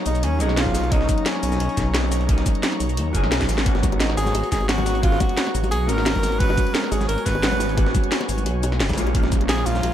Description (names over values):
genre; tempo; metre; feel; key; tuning
liquid drum and bass; 175 BPM; 4/4; straight; G# dorian; A4 = 440 Hz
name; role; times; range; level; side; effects
vintage hollow-body jazz guitar; accompaniment; 0.0-9.9 s; F#3 to A#4; -28 LUFS; equal; dub echo
airy breathy pad; sustained chords; 0.0-9.9 s; D#4 to C#6; -32 LUFS; equal; chorus, sidechain pumping
clear tenor saxophone; melody; 0.1-9.9 s; C#4 to B4; -27 LUFS; equal; dub echo
swelling detuned saw bass; bass; 0.1-9.9 s; F#1 to D#2; -23 LUFS; equal; none
breakbeat sampler-style drum kit; drums; 0.1-9.9 s; hi-hat, snare drum; -31 LUFS; right 1 dB; high-pass filter on hats, high-pass filter on snare, high-pass filter on room
drum and bass drum kit; drums; 0.1-9.9 s; cabasa, hi-hat, snare drum; -26 LUFS; equal; none
electronic kick drum; drums; 0.7-9.4 s; none; -22 LUFS; equal; none
bongos and congas; percussion; 3.8-9.9 s; none; -31 LUFS; left 5 dB; none
room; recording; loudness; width
little or no reverb; none; -18 LUFS; side -11 dB against mid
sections
0.0-9.9 A section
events
drum fill 3.4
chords
0.0 Bmaj9; 3.7 G#m11; 9.0 A#m7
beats
0.23 0.57 | 0.92 1.26 1.60 1.95 | 2.29 2.63 2.98 3.32 | 3.66 4.00 4.35 4.69 | 5.03 5.38 5.72 6.06 | 6.40 6.75 7.09 7.43 | 7.78 8.12 8.46 8.80 | 9.15 9.49 9.83